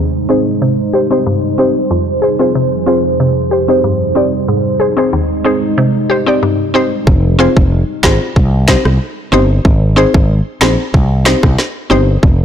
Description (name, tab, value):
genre	dancehall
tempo	93 BPM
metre	4/4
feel	straight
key	C minor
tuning	A4 = 438 Hz
part	mallet-like synth pluck	accompaniment	0.0-12.0 s	Eb2 to D5	-13 LUFS	left 1 dB	chorus
part	deep dark ambient pad	sustained chords	0.0-7.1 s	Eb4 to C5	-16 LUFS	right 2 dB	chorus, built-in reverb, sidechain pumping
part	fretless electric bass	bass	7.1-12.4 s	F1 to C2	-12 LUFS	equal	none
part	island pop drum kit	drums	7.1-12.4 s	finger snaps, kick drum, rim click, snare drum	-12 LUFS	equal	overdrive
part	bongos	percussion	8.0-12.1 s	none	-23 LUFS	right 4 dB	none
room	light reverb, digital ambience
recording	blown-out, overdriven recording, overdrive, low-pass filter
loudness	-10 LUFS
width	side -8 dB against mid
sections	0.0-7.1 A section; 7.1-12.4 B section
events	filter sweep 0.0-7.1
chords	0.0 Ab; 0.6 Cm; 1.9 Fm; 3.2 Cm; 4.5 Ab; 5.8 Cm; 7.1 Fm; 8.4 Cm; 9.7 Ab; 10.9 Cm